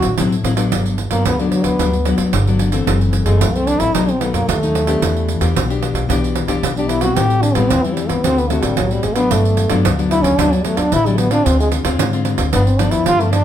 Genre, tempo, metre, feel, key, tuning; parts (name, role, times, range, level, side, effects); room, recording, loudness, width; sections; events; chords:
samba and choro; 112 BPM; 4/4; straight; G major; A4 = 440 Hz
warm trombone; melody; 0.0-13.4 s; D3 to G4; -18 LUFS; equal; plate reverb
nylon-string guitar; accompaniment; 0.0-13.4 s; F#2 to G4; -19 LUFS; left 4 dB
upright bass; bass; 0.0-13.4 s; F#1 to Ab2; -19 LUFS; equal
pandeiro; percussion; 0.0-13.4 s; -21 LUFS; right 6 dB
wet studio reverb, RT60 0.6 s; heard from further back in the room; -14 LUFS; side -10 dB against mid
0.7-13.4 A section
trombone solo 0.7-13.4
0.0 D9; 0.7 Gmaj7; 2.9 F#m7b5; 3.9 B7; 5.0 Em7; 7.2 Am7; 8.2 D7; 9.3 Gmaj7; 11.5 Dm7b5; 12.5 G7